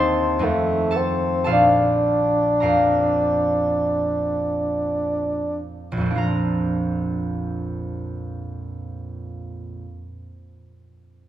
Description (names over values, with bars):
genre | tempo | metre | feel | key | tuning
classical, romantic duo for bassoon and harp | 47-60 BPM | 4/4 | rubato | Bb major | A4 = 440 Hz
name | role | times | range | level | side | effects
dark bassoon | melody | 0.0-5.6 s | A3 to D4 | -20 LUFS | equal | none
concert harp | accompaniment | 0.0-9.9 s | Bb1 to Eb6 | -23 LUFS | right 1 dB | none
room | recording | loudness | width
wet recital hall reverb, RT60 1.6 s | minimal, uncompressed stereo recording | -19 LUFS | side -12 dB against mid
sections
0.0-6.2 A section; 6.2-11.1 B section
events
slowing down 0.0-6.2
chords
0.4 F7; 1.5 Bb